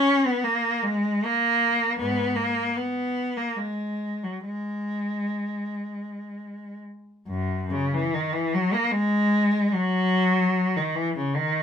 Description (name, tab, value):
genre	classical, free, expressive piece for unaccompanied cello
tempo	55-80 BPM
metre	3/4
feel	rubato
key	unclear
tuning	A4 = 441 Hz
part	rich cello	solo	0.0-11.6 s	F#2 to C#4	-22 LUFS	equal	none
room	moderate studio reverb, RT60 0.6 s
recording	minimal, uncompressed stereo recording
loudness	-22 LUFS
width	side -7 dB against mid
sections	0.0-7.3 A section; 7.3-11.6 B section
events	none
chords	none